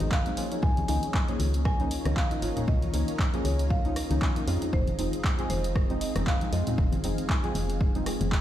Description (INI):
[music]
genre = deep house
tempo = 117 BPM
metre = 4/4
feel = swing 56% on 16ths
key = unclear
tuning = A4 = 440 Hz
[part]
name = marimba with medium mallets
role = melody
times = 0.0-8.4 s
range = C5 to Ab5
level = -37 LUFS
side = equal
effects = digital delay
[part]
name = warm analog pad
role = sustained chords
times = 0.0-8.4 s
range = Bb3 to F5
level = -39 LUFS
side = left 2 dB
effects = chorus, sidechain pumping
[part]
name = deep mellow chord stab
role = stabs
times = 0.0-8.4 s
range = F3 to Ab4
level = -33 LUFS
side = equal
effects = chorus, sidechain pumping, tape echo
[part]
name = woody FM bass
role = bass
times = 0.0-8.4 s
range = F1 to F2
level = -30 LUFS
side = equal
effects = sidechain pumping
[part]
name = punchy analog drum machine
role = drums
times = 0.0-8.4 s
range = handclaps, hi-hat, rim click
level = -36 LUFS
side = equal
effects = none
[part]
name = congas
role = percussion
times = 0.0-8.3 s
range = none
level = -36 LUFS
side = left 4 dB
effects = none
[part]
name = granular cloud pad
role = texture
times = 0.0-8.4 s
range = Gb3 to Bb5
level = -40 LUFS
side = equal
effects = built-in reverb, sidechain pumping
[part]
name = electronic kick drum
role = drums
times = 0.1-8.4 s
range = none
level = -28 LUFS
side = equal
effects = overdrive
[sound]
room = little or no reverb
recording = played on a big sound system in a bare room, stone room reverb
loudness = -24 LUFS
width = side -12 dB against mid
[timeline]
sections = 0.0-8.4 A section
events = none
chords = 0.4 Db69; 4.5 Fm7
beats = 0.11 | 0.63 1.14 1.65 2.17 | 2.68 3.19 3.70 4.22 | 4.73 5.24 5.76 6.27 | 6.78 7.29 7.81 8.32